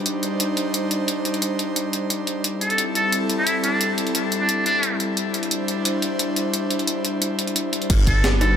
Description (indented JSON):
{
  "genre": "liquid drum and bass",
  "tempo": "176 BPM",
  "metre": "4/4",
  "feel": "straight",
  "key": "unclear",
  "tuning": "A4 = 440 Hz",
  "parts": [
    { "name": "airy breathy pad", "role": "sustained chords", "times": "0.0-8.6 s", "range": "G3 to C5", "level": "-23 LUFS", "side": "left 1 dB", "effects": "chorus" },
    { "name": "breakbeat sampler-style drum kit", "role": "drums", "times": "0.1-8.5 s", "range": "crash cymbal, hi-hat, snare drum", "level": "-24 LUFS", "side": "equal", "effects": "none" },
    { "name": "trumpet with metal mute", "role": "melody", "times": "2.6-5.0, 8.1-8.6 s", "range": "D4 to A4", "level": "-23 LUFS", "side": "equal", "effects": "ping-pong delay" },
    { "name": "dark detuned saw bass", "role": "bass", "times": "7.9-8.6 s", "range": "G1", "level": "-19 LUFS", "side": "equal", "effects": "none" },
    { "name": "electronic kick drum", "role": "drums", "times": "7.9-8.1 s", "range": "none", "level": "-19 LUFS", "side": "equal", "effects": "none" }
  ],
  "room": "moderate recital hall reverb, RT60 1.5 s, digital ambience",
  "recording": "none",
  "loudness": "-20 LUFS",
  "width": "side -8 dB against mid",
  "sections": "0.0-7.9 A section",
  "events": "none",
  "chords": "0.0 Cmadd9; 2.4 Am7; 5.2 D9sus4; 7.9 Gmaj7",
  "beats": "0.06 0.40 0.74 | 1.08 1.42 1.76 2.10 | 2.44 2.79 3.13 3.47 | 3.81 4.15 4.49 4.83 | 5.17 5.51 5.85 6.20 | 6.54 6.88 7.22 7.56 | 7.90 8.24"
}